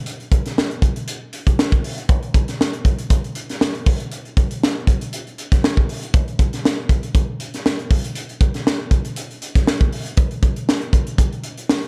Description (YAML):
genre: pop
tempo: 119 BPM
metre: 4/4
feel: swing 54% on 16ths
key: none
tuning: none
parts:
  - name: crisp fusion drum kit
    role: drums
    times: 0.1-11.9 s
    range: hi-hat, kick drum, snare drum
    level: -20 LUFS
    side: equal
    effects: none
room: light reverb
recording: dark, warm production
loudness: -20 LUFS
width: mono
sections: 0.0-11.9 A section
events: none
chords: none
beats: | 0.07 0.57 1.08 1.58 | 2.09 2.60 3.10 3.61 | 4.12 4.62 5.13 5.63 | 6.14 6.64 7.15 7.65 | 8.16 8.66 9.17 9.67 | 10.18 10.68 11.18 11.69